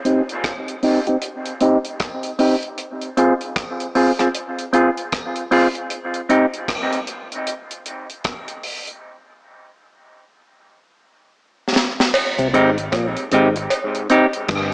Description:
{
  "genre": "dub reggae",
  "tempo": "77 BPM",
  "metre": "4/4",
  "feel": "swing 61% on 16ths",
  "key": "C minor",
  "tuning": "A4 = 440 Hz",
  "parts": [
    { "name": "semi-hollow electric guitar", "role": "accompaniment", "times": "0.0-6.5, 12.5-14.3 s", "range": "C4 to Ab4", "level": "-18 LUFS", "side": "equal", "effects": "warbly pitch drift, low-pass filter, dub echo" },
    { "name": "deep reggae drum kit", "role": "drums", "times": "0.1-14.7 s", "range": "crash cymbal, hi-hat, kick drum, rim click, snare drum", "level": "-23 LUFS", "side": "equal", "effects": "none" },
    { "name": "cowbell", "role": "percussion", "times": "12.1-13.9 s", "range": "none", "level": "-25 LUFS", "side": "right 1 dB", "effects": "dub echo" },
    { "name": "mellow clav", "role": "riff", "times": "12.4-14.7 s", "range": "G2 to C3", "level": "-26 LUFS", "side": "left 1 dB", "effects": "dub echo" },
    { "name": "vintage muted fingered electric bass", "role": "bass", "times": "12.4-14.7 s", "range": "G1 to C2", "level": "-29 LUFS", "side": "equal", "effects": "none" }
  ],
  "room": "moderate plate reverb, RT60 2.3 s",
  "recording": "echo-heavy mix, small speaker sound",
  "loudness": "-17 LUFS",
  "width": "side -27 dB against mid",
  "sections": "0.0-12.1 A section; 12.1-14.7 B section",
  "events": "filter sweep on clean electric guitar 0.0-12.1; break 5.9-12.1; drum fill 10.6-12.1",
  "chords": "0.0 Cm; 2.8 Fm; 5.9 Cm; 9.0 N.C.; 12.1 Cm"
}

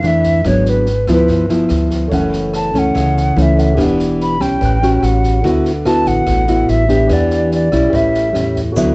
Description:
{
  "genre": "bossa nova",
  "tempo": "144 BPM",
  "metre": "4/4",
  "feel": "straight",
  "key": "D major",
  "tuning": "A4 = 440 Hz",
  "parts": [
    { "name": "hollow concert flute", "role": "melody", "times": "0.0-8.6 s", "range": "B4 to B5", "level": "-17 LUFS", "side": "equal", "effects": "cassette tape" },
    { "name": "nylon-string guitar", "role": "accompaniment", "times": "0.0-8.9 s", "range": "F2 to G4", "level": "-14 LUFS", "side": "equal", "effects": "cassette tape" },
    { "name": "upright bass", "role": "bass", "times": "0.0-8.9 s", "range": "E1 to F2", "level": "-18 LUFS", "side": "equal", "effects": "none" },
    { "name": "open jazz drum kit", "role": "drums", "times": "0.0-8.9 s", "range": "kick drum, rim click, snare drum", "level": "-26 LUFS", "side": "equal", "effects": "cassette tape" },
    { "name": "warm grand piano", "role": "accompaniment", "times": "2.1-8.9 s", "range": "F#4 to F#6", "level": "-24 LUFS", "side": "right 1 dB", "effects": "cassette tape" },
    { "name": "tube shaker", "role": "percussion", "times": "8.8-8.9 s", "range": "none", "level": "-31 LUFS", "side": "right 2 dB", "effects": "none" }
  ],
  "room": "moderate studio reverb, RT60 0.6 s",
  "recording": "home recording on cassette, nothing above 8.0 kHz",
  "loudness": "-11 LUFS",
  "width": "side -28 dB against mid",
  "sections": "0.0-8.8 A section",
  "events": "none",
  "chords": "0.5 G#m7b5; 1.3 G6; 2.1 F#m7; 3.8 Em7; 4.6 A13; 5.4 D69; 7.1 Em7; 7.9 A7"
}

